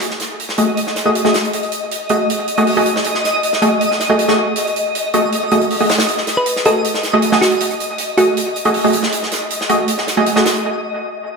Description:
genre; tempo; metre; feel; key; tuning
drum and bass, jungle; 158 BPM; 4/4; straight; F# dorian; A4 = 441 Hz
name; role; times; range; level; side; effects
big rock drum kit; drums; 0.0-10.6 s; hi-hat, snare drum; -21 LUFS; right 1 dB; high-pass filter on hats, high-pass filter on snare, high-pass filter on room
twinkling granular texture; texture; 0.7-10.6 s; D#5; -21 LUFS; left 2 dB; built-in reverb
orchestra-hit-like synth stab; stabs; 0.6-10.4 s; A3 to D#5; -16 LUFS; right 1 dB; built-in reverb, dub echo
thumb-piano-like synth pluck; melody; 6.4-8.6 s; F#4 to B4; -18 LUFS; equal; chorus, dub echo
room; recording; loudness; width
moderate plate reverb, RT60 1.3 s, digital ambience; none; -14 LUFS; side -4 dB against mid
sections
0.0-11.4 A section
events
break 10.6-11.4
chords
0.0 F#m69

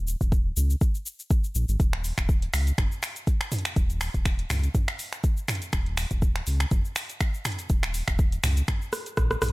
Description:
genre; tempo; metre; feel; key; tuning
afro house; 122 BPM; 4/4; swing 55% on 16ths; unclear; A4 = 440 Hz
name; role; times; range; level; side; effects
round analog bass; bass; 0.0-9.5 s; Eb1 to Db2; -27 LUFS; equal; tube saturation, sidechain pumping
deep house drum kit; drums; 0.1-9.5 s; cabasa, finger snaps, hi-hat, rim click, toms; -30 LUFS; equal; none
electronic kick drum; drums; 0.2-9.3 s; none; -24 LUFS; equal; none
room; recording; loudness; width
little or no reverb; none; -24 LUFS; side -22 dB against mid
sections
0.0-9.5 A section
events
drum fill 8.9-9.5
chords
none

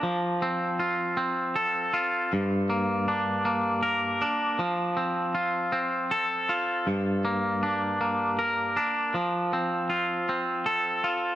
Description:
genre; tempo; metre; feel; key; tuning
rock; 53 BPM (dotted quarters); 6/8; straight; unclear; A4 = 441 Hz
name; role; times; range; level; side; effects
twangy electric guitar; solo; 0.0-11.4 s; G2 to Bb4; -24 LUFS; equal; harmonic tremolo, tape echo
room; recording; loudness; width
moderate spring reverb, RT60 1.7 s; echo-heavy mix; -24 LUFS; side -13 dB against mid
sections
0.0-11.4 A section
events
none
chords
0.0 F; 2.3 Gm; 4.6 F; 6.9 Gm; 9.1 F

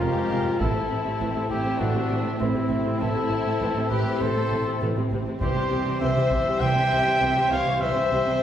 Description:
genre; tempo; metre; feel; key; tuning
cinematic, epic orchestral film score; 100 BPM; 4/4; straight; unclear; A4 = 439 Hz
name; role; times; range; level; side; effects
warm symphonic violin section; melody; 0.0-8.4 s; C4 to E5; -30 LUFS; left 4 dB; none
warm symphonic violin section; second line; 0.0-8.4 s; Ab3 to C4; -34 LUFS; left 1 dB; none
rich symphonic viola section; accompaniment; 0.0-8.4 s; C3 to A3; -32 LUFS; equal; none
warm French horn section; sustained chords; 0.0-8.4 s; C3 to F4; -33 LUFS; left 3 dB; none
warm woodwind section; sustained chords; 0.0-8.4 s; G3 to C6; -35 LUFS; left 2 dB; none
clear trumpet; stabs; 0.0-8.4 s; E4 to G5; -26 LUFS; equal; none
clear symphonic double bass section; bass; 0.0-8.2 s; F1 to C2; -30 LUFS; right 2 dB; none
warm symphonic cello section; bass; 0.0-8.4 s; F2 to C3; -30 LUFS; right 2 dB; none
taiko ensemble; drums; 0.6-1.8, 5.4-6.6 s; none; -31 LUFS; equal; none
room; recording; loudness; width
wet recital hall reverb, RT60 1.2 s; heard from further back in the room; -21 LUFS; side -10 dB against mid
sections
0.0-8.4 A section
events
none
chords
0.0 Fm; 0.6 Am; 5.4 C

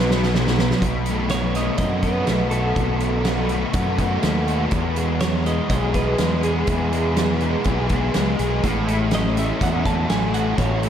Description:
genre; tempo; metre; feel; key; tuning
rock, shoegaze and dream pop; 123 BPM; 4/4; straight; B mixolydian; A4 = 439 Hz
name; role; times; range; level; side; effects
direct-recorded clean electric guitar; melody; 0.0-10.9 s; G#4 to A5; -29 LUFS; right 2 dB; spring reverb, diffuse ambient delay
fuzz guitar; riff; 0.0-10.9 s; E2 to G#4; -22 LUFS; left 1 dB; distortion, analog chorus
growling fingered electric bass; bass; 0.0-10.9 s; A1 to F#2; -23 LUFS; equal; overdrive
loose indie drum kit; drums; 0.1-10.9 s; hi-hat, kick drum, snare drum; -25 LUFS; right 1 dB; none
room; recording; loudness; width
wet cathedral reverb, RT60 5.7 s; dreamy mix soaked in reverb; -18 LUFS; side -9 dB against mid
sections
0.8-10.9 A section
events
drum fill 0.0-0.8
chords
0.0 B5; 0.8 B7(no3); 4.7 E; 8.6 A6

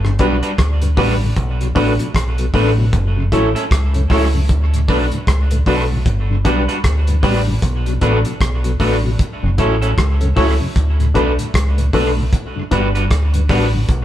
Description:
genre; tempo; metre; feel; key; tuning
roots reggae; 77 BPM; 4/4; swing 60% on 16ths; unclear; A4 = 439 Hz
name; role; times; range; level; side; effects
mellow tonewheel organ; accompaniment; 0.0-13.8 s; D2 to F#4; -24 LUFS; left 2 dB; chorus vibrato, slow rotary speaker
deep dub fingered electric bass; bass; 0.0-14.0 s; F#1 to D2; -17 LUFS; equal; none
cloth-damped thuddy drum kit; drums; 0.0-14.0 s; hi-hat, kick drum, rim click; -20 LUFS; equal; tape echo
electric guitar at the edge of break-up; accompaniment; 0.2-13.7 s; F#3 to B4; -22 LUFS; right 1 dB; tape echo
overdriven reed electric piano; stabs; 0.2-13.7 s; D4 to C#5; -22 LUFS; left 1 dB; fast tremolo
room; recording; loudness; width
moderate stone room reverb, RT60 1.2 s; band playing live in one room; -14 LUFS; side -12 dB against mid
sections
0.0-14.0 A section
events
none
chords
0.0 Gmaj7; 1.4 Bm7; 2.9 F#m7; 4.5 D6; 6.1 Gmaj7; 7.6 Bm7; 9.2 F#m7; 10.8 D6; 12.3 Gmaj7

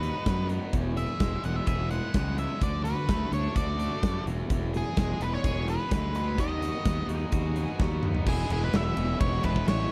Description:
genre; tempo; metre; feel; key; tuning
classic rock; 127 BPM; 4/4; straight; E major; A4 = 440 Hz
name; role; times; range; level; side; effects
octave-fuzz lead guitar; melody; 0.0-9.9 s; G#4 to F#5; -36 LUFS; equal; distortion, slapback echo
crunchy overdriven guitar; riff; 0.0-9.9 s; E2 to G#4; -40 LUFS; equal; none
tight distorted guitar; riff; 0.0-9.9 s; E2 to G#4; -42 LUFS; equal; distortion
fuzz fingered electric bass; bass; 0.0-9.9 s; E1 to F#2; -32 LUFS; equal; overdrive
huge arena drum kit; drums; 0.0-9.8 s; crash cymbal, hi-hat, kick drum, ride cymbal, snare drum, toms; -32 LUFS; equal; none
octave-fuzz lead guitar; second line; 7.1-8.0 s; F#4 to G#4; -43 LUFS; equal; distortion
room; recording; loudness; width
little or no reverb; none; -28 LUFS; mono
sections
0.0-8.3 A section; 8.3-9.9 B section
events
drum fill 7.8-8.3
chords
0.0 B/D#; 0.7 E; 2.6 D; 4.3 E; 6.4 B/D#; 8.3 E

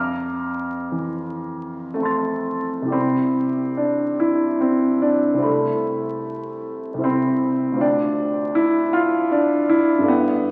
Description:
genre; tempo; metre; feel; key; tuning
classical, impressionist solo piano; 53-80 BPM; 3/4; rubato; C major; A4 = 440 Hz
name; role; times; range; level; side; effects
clear grand piano; solo; 0.0-10.5 s; C2 to A6; -21 LUFS; equal; none
room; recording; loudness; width
wet scoring stage reverb, RT60 1.4 s; very old 78 rpm record, vinyl crackle; -21 LUFS; mono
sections
0.0-3.0 A section; 3.0-10.5 B section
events
none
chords
0.0 Fmaj7; 3.0 Cmaj9; 5.5 Amadd9/C; 7.8 Dm11

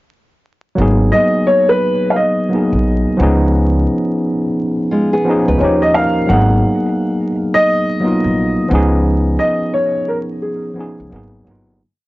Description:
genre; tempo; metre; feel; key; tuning
lo-fi hip hop; 87 BPM; 4/4; swing 64% on 16ths; G# dorian; A4 = 440 Hz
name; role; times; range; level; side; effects
tine electric piano; accompaniment; 0.8-11.8 s; E#3 to A#4; -16 LUFS; equal; medium stereo tremolo, low-pass filter
upright bass; bass; 0.8-11.8 s; G1 to D#2; -16 LUFS; equal; tube saturation
dark upright piano; melody; 1.1-11.1 s; G#4 to F#5; -16 LUFS; equal; low-pass filter, tape echo
nylon-string guitar; second line; 4.9-5.8 s; G#3 to B4; -18 LUFS; equal; low-pass filter, tape echo
room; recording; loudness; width
light reverb; dry, gritty hardware recording, transformer saturation, vinyl crackle, nothing above 7.5 kHz; -12 LUFS; side -18 dB against mid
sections
0.8-11.8 A section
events
fade-out 9.1-11.8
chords
0.8 G#m9; 3.2 C#7; 5.6 D#7; 6.3 G#m9; 8.7 C#7; 11.1 G#m7

